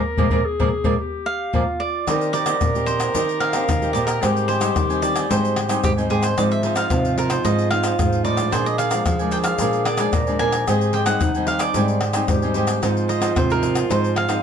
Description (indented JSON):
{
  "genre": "samba and choro",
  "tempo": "112 BPM",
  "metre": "4/4",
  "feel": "straight",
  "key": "Eb major",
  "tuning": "A4 = 440 Hz",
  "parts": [
    { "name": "mellow clarinet", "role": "second line", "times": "0.0-14.4 s", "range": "Eb4 to Bb4", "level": "-26 LUFS", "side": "equal", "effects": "none" },
    { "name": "nylon-string guitar", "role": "bass", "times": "0.0-14.4 s", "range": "Ab2 to F3", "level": "-24 LUFS", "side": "right 1 dB", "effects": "none" },
    { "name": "cavaquinho", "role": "accompaniment", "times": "0.2-14.4 s", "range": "D4 to Ab5", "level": "-27 LUFS", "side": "right 4 dB", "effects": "none" },
    { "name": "nylon-string guitar", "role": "accompaniment", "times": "0.2-14.4 s", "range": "F2 to G4", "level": "-27 LUFS", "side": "left 4 dB", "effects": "none" },
    { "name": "surdo, egg shaker, pandeiro and tamborim", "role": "percussion", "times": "0.2-14.4 s", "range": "none", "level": "-24 LUFS", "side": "left 2 dB", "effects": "none" },
    { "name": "cavaquinho", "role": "melody", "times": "1.3-14.4 s", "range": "G4 to Ab5", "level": "-24 LUFS", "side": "right 2 dB", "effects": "none" }
  ],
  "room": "light reverb",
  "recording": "nothing above 10.8 kHz",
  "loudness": "-18 LUFS",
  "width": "side -7 dB against mid",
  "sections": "0.0-2.1 A section; 2.1-14.4 B section",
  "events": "band accent 0.0-2.1",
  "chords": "0.0 Bb7; 2.1 Eb6; 4.2 Abmaj7; 6.4 Fm7/Ab; 8.5 Bb7; 10.7 Abmaj7; 12.8 Fm7/Ab"
}